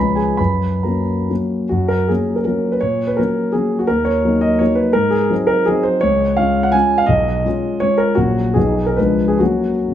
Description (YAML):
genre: classical, romantic triple-time dance for piano with dotted rhythms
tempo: 127-178 BPM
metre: 3/4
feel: rubato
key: F# major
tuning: A4 = 440 Hz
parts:
  - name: warm concert grand piano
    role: solo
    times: 0.0-9.9 s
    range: A#1 to B5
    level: -14 LUFS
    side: equal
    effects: none
room: moderate recital hall reverb, RT60 1.6 s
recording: close, detailed microphones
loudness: -14 LUFS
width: side -10 dB against mid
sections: 0.0-1.7 A section; 1.7-9.9 A section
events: none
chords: 0.4 F#; 2.8 F#/A#; 3.9 D#m7; 5.0 G#7; 6.0 C#; 7.1 C#7/B; 8.2 F#/A#; 8.6 B6; 9.0 C#7b9; 9.4 F#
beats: | 0.39 0.85 1.30 | 1.71 2.09 2.46 | 2.82 3.18 3.54 | 3.89 4.24 4.61 | 4.95 5.31 5.68 | 6.03 6.39 6.74 | 7.09 7.46 7.83 | 8.18 8.56 8.98 | 9.40 9.87